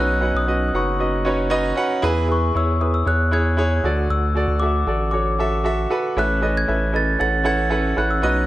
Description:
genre	piano-driven pop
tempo	116 BPM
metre	4/4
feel	straight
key	unclear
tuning	A4 = 438 Hz
part	glockenspiel with rubber mallets	melody	0.0-8.5 s	C#6 to A6	-24 LUFS	left 2 dB	none
part	clear baby grand piano	accompaniment	0.0-8.5 s	A2 to F#5	-21 LUFS	right 2 dB	none
part	round analog bass	bass	0.0-8.5 s	F#1 to E2	-22 LUFS	equal	none
room	light reverb, small room ambience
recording	none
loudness	-18 LUFS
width	side -15 dB against mid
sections	0.0-8.5 A section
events	none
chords	0.0 Badd9; 2.0 E; 3.8 D; 6.2 Aadd9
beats	0.48 1.00 1.51 | 2.03 2.55 3.06 3.58 | 4.10 4.62 5.13 5.65 | 6.17 6.68 7.20 7.71 | 8.23

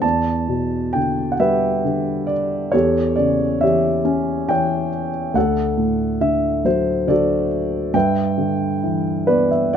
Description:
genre	classical, lyrical solo piano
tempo	68 BPM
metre	3/4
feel	rubato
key	G major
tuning	A4 = 440 Hz
part	dark grand piano	solo	0.0-9.8 s	D2 to A5	-17 LUFS	equal	none
room	light reverb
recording	nothing above 7.4 kHz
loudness	-17 LUFS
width	side -8 dB against mid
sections	0.0-9.8 A section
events	grand piano fill 8.8-9.8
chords	0.0 Em7; 2.7 A7/E; 5.4 D; 7.9 G6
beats	| 0.03 0.94 1.84 | 2.73 3.62 4.49 | 5.35 6.21 7.08 | 7.95 8.83 9.74

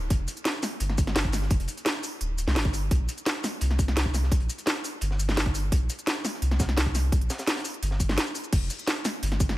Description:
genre	liquid drum and bass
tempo	171 BPM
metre	4/4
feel	straight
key	unclear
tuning	A4 = 439 Hz
part	warm sub bass	bass	0.0-9.6 s	D1 to C2	-26 LUFS	equal	none
part	crunchy breakbeat drum kit	drums	0.1-9.6 s	hi-hat, snare drum	-39 LUFS	equal	none
part	electronic kick drum	drums	0.1-9.5 s	none	-26 LUFS	equal	none
part	garage drum kit	drums	0.1-9.6 s	crash cymbal, hi-hat, shaker, snare drum	-29 LUFS	equal	none
room	little or no reverb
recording	none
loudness	-24 LUFS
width	side -16 dB against mid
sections	0.0-9.6 A section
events	none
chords	none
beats	| 0.10 0.46 0.81 1.16 | 1.51 1.86 2.21 2.56 | 2.91 3.26 3.61 3.96 | 4.31 4.67 5.02 5.37 | 5.72 6.07 6.42 6.77 | 7.12 7.47 7.82 8.17 | 8.53 8.88 9.23

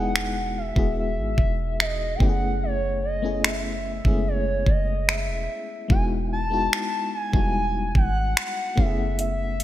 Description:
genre	contemporary R&B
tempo	73 BPM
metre	4/4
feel	straight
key	E major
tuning	A4 = 440 Hz
part	gliding portamento lead	melody	0.0-9.6 s	C#5 to A5	-28 LUFS	equal	chorus, digital delay
part	FM electric piano with tremolo	accompaniment	0.0-9.6 s	G3 to G#4	-30 LUFS	left 3 dB	none
part	soft 808-style bass	bass	0.0-9.6 s	D#1 to G#1	-27 LUFS	equal	none
part	smooth R&B drum kit	drums	0.2-9.6 s	finger snaps, hi-hat, kick drum	-23 LUFS	equal	none
room	light reverb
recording	bright 1980s-style digital production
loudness	-21 LUFS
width	side -13 dB against mid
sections	0.0-9.6 A section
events	none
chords	0.0 Emaj9; 2.2 F#m11; 5.9 Emaj9; 8.8 F#m11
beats	0.15 0.97 1.79 | 2.61 3.43 4.26 5.08 | 5.90 6.72 7.54 8.37 | 9.19

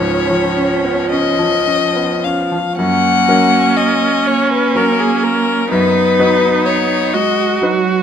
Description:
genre	classical, slow romantic movement for piano quartet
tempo	35-43 BPM (dotted quarters)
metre	6/8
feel	rubato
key	F# major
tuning	A4 = 442 Hz
part	warm violin	melody	0.0-7.6 s	G#4 to F#5	-16 LUFS	left 7 dB	none
part	clear cello	second line	0.0-8.0 s	F#3 to C#4	-20 LUFS	right 6 dB	none
part	bright concert grand piano	accompaniment	0.0-8.0 s	C#2 to B4	-19 LUFS	equal	none
part	clear viola	accompaniment	0.0-8.0 s	E#3 to F#4	-18 LUFS	right 3 dB	none
room	light reverb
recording	close, detailed microphones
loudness	-12 LUFS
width	side -8 dB against mid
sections	0.0-2.8 A section; 2.8-8.0 B section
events	none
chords	0.0 C#; 2.8 F#; 5.7 B/F#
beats	1.11 | 2.78 4.26 | 5.71 7.14

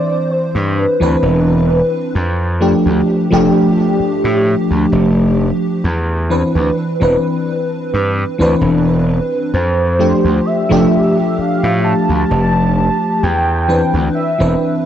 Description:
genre	vaporwave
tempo	65 BPM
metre	4/4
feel	swing 54% on 16ths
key	C major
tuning	A4 = 440 Hz
part	warm velvety synth lead	melody	0.0-1.7, 9.5-14.9 s	B4 to A5	-19 LUFS	right 1 dB	chorus, tape echo
part	FM electric piano with soft pad layer	accompaniment	0.0-14.9 s	E3 to C5	-14 LUFS	equal	ensemble chorus, tape echo
part	gritty slap bass	bass	0.6-14.5 s	E1 to A2	-16 LUFS	equal	overdrive
room	light reverb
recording	dark, warm production, cassette tape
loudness	-12 LUFS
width	side -10 dB against mid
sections	0.0-14.9 A section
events	none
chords	0.0 Cmaj9; 2.2 F69; 5.8 Cmaj9; 9.5 F69; 13.2 Cmaj9/E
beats	0.30 1.23 | 2.15 3.07 4.00 4.92 | 5.84 6.77 7.69 8.61 | 9.54 10.46 11.38 12.30 | 13.23 14.15

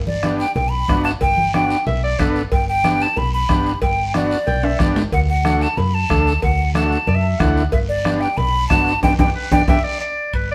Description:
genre	latin, cumbia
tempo	184 BPM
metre	4/4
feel	straight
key	G major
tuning	A4 = 443 Hz
part	hollow-body short-scale fingered electric bass	bass	0.0-10.5 s	G1 to F#2	-24 LUFS	equal	none
part	hollow jazz flute	melody	0.1-9.8 s	D5 to B5	-22 LUFS	equal	none
part	congas	percussion	0.1-9.8 s	none	-28 LUFS	equal	none
part	overdriven combo organ	accompaniment	0.2-9.8 s	A3 to A4	-25 LUFS	equal	none
part	bombo	percussion	0.2-10.5 s	none	-24 LUFS	equal	none
part	guiro	percussion	0.2-10.5 s	none	-38 LUFS	equal	none
part	cowbell and timbales	percussion	0.6-10.5 s	none	-28 LUFS	equal	none
part	clear clarinet	second line	1.9-2.4, 4.5-5.0, 7.1-10.5 s	B4 to G5	-26 LUFS	equal	none
room	moderate stone room reverb, RT60 1.1 s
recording	band playing live in one room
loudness	-18 LUFS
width	mono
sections	0.0-10.3 A section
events	drum fill 4.6-5.1, 9.0-10.3; band accent 9.0-10.3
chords	0.0 G; 5.1 D; 7.7 G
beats	0.24 0.56 0.89 | 1.22 1.54 1.87 2.19 | 2.52 2.85 3.17 3.50 | 3.82 4.15 4.48 4.80 | 5.13 5.45 5.78 6.10 | 6.43 6.76 7.08 7.41 | 7.73 8.06 8.38 8.71 | 9.03 9.36 9.69 10.01 | 10.34

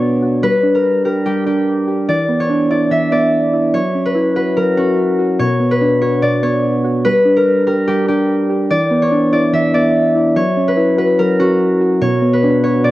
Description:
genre	hip hop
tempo	145 BPM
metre	4/4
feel	half-time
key	B harmonic minor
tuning	A4 = 436 Hz
part	concert harp	melody	0.0-12.9 s	F#4 to E5	-15 LUFS	left 1 dB	cassette tape
part	soft electric-piano-like synth keys	accompaniment	0.0-12.9 s	B2 to G4	-15 LUFS	equal	chorus
room	light reverb, small room ambience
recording	home recording on cassette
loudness	-12 LUFS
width	side -16 dB against mid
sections	0.0-5.4 A section; 5.4-12.9 B section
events	none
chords	0.4 G5; 2.1 E5; 3.7 F#5; 5.4 Bm; 7.0 G5; 8.7 E5; 10.4 F#5; 12.0 Bm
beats	0.02 | 0.43 0.84 1.26 1.67 | 2.08 2.50 2.91 3.33 | 3.74 4.15 4.57 4.98 | 5.39 5.81 6.22 6.64 | 7.05 7.46 7.88 8.29 | 8.71 9.12 9.53 9.95 | 10.36 10.78 11.19 11.60 | 12.02 12.43 12.84

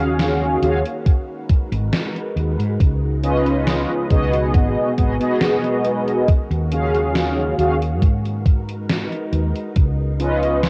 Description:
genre	vaporwave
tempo	69 BPM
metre	4/4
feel	straight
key	G# dorian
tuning	A4 = 441 Hz
part	mellow synth brass	accompaniment	0.0-10.7 s	B3 to E#5	-22 LUFS	equal	ensemble chorus, cassette tape, tape echo
part	soft string machine	sustained chords	0.0-10.7 s	C#3 to E#5	-31 LUFS	equal	ensemble chorus, vintage 12-bit sampler grit, cassette tape
part	woody fretless electric bass	bass	0.0-10.7 s	G#1 to G#2	-24 LUFS	equal	tube saturation
part	gated 80s digital drum machine	drums	0.2-10.7 s	hi-hat, snare drum	-27 LUFS	equal	gated reverb, gated reverb snare, cassette tape
part	electronic kick drum	drums	1.1-9.9 s	none	-18 LUFS	equal	cassette tape
room	light reverb, digital ambience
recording	home recording on cassette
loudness	-19 LUFS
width	mono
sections	0.0-10.7 A section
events	none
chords	0.0 D#m11; 1.1 G#m7; 2.8 C#9; 4.5 G#m7; 6.3 D#m11; 8.0 G#m7; 9.8 C#9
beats	0.19 1.06 1.93 | 2.80 3.67 4.54 5.41 | 6.28 7.15 8.02 8.89 | 9.76 10.63

